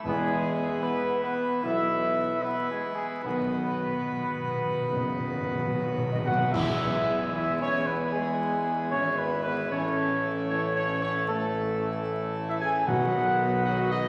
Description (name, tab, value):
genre	classical, ceremonial fanfare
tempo	76 BPM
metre	4/4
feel	straight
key	E major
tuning	A4 = 440 Hz
part	dark trumpet section	melody	0.0-14.1 s	G#4 to G#5	-31 LUFS	equal	none
part	pipe organ, full organ	sustained chords	0.0-14.1 s	B2 to B4	-36 LUFS	equal	none
part	warm French horn section	sustained chords	0.0-14.1 s	G#3 to G#4	-36 LUFS	equal	none
part	warm tuba	bass	0.0-14.1 s	F#1 to E2	-35 LUFS	equal	none
part	timpani	percussion	0.0-7.7, 12.9-14.0 s	E2 to B2	-36 LUFS	equal	none
part	warm trombone section	sustained chords	0.1-14.1 s	D#3 to B3	-40 LUFS	equal	none
part	cymbal swell, clash cymbals and concert bass drum	percussion	3.2-8.1 s	none	-41 LUFS	equal	none
room	wet concert hall reverb, RT60 2.0 s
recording	vinyl crackle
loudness	-28 LUFS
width	mono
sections	0.0-6.5 A section; 6.5-14.1 B section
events	timpani fill 3.2-6.5; band accent 6.5-7.3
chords	0.0 E; 3.2 B; 6.5 E; 9.7 A; 12.9 B